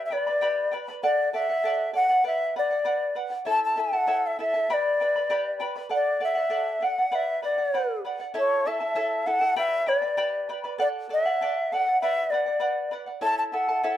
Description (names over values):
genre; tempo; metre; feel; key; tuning
andean folk, Andean ensemble; 98 BPM; 2/4; straight; unclear; A4 = 440 Hz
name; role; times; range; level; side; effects
bright large quena; melody; 0.0-14.0 s; C#5 to A5; -24 LUFS; left 1 dB; plate reverb
charango; accompaniment; 0.0-14.0 s; E4 to B5; -29 LUFS; right 3 dB; none
room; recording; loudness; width
moderate small room reverb, RT60 0.5 s; none; -23 LUFS; side -12 dB against mid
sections
0.0-8.4 A section; 8.4-14.0 A section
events
none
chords
0.0 G; 1.0 D; 2.3 Bm; 3.5 A; 4.7 G; 5.9 D; 7.1 Bm; 8.4 A; 9.6 G; 10.8 D; 12.0 Bm; 13.2 A